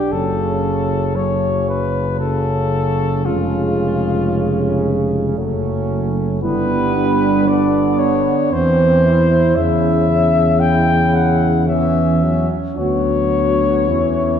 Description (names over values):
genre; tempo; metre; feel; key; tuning
classical, hymn-like piece for brass band; 57 BPM; 3/4; rubato; unclear; A4 = 440 Hz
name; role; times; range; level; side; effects
mellow cornet; melody; 0.0-14.4 s; E#4 to G5; -19 LUFS; left 3 dB; none
clear French horn section; second line; 0.0-14.4 s; B3 to F#4; -24 LUFS; right 3 dB; none
bright trombone; accompaniment; 0.1-14.4 s; C#3 to G3; -23 LUFS; right 3 dB; none
warm euphonium; accompaniment; 0.1-14.4 s; F#3 to E4; -22 LUFS; right 1 dB; none
dark tuba; bass; 0.1-14.4 s; E#1 to E2; -19 LUFS; equal; none
room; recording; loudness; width
wet scoring stage reverb, RT60 1.9 s; heard from further back in the room; -14 LUFS; side -8 dB against mid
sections
0.0-14.4 A section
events
none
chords
0.1 F#m; 3.2 C#/E#; 5.4 F#m; 6.4 G; 8.5 C/E; 9.6 N.C.; 12.8 Bm/D; 13.9 C#m/E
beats
| 0.11 1.16 2.20 | 3.25 4.32 5.38 | 6.42 7.45 8.52 | 9.56 10.60 11.68 | 12.78 13.89